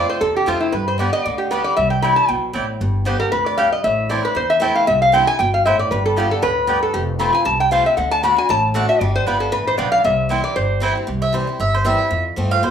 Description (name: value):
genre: bluegrass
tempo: 232 BPM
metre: 4/4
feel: swing 55% on 8ths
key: C major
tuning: A4 = 435 Hz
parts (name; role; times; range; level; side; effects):
- lap resonator guitar; melody; 0.0-11.0 s; E4 to B5; -17 LUFS; left 1 dB; plate reverb
- picked swing-style acoustic guitar; accompaniment; 0.0-12.7 s; E2 to G4; -25 LUFS; left 2 dB; plate reverb
- mandolin; stabs; 0.0-12.7 s; A3 to A5; -23 LUFS; right 5 dB; plate reverb
- upright bass; bass; 0.0-12.7 s; F1 to G2; -23 LUFS; equal; none
room: moderate small room ambience, RT60 0.5 s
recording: rough home demo mix, small room ambience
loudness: -15 LUFS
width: side -8 dB against mid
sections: 0.0-2.8 A section; 2.8-11.1 B section; 11.1-12.7 C section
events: mandolin solo 11.1-12.7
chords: 0.0 F; 0.7 G; 1.8 Cadd9; 2.8 G; 3.8 Am; 4.9 C; 5.9 G; 6.9 F; 8.0 D; 9.0 G7; 10.0 C; 12.1 F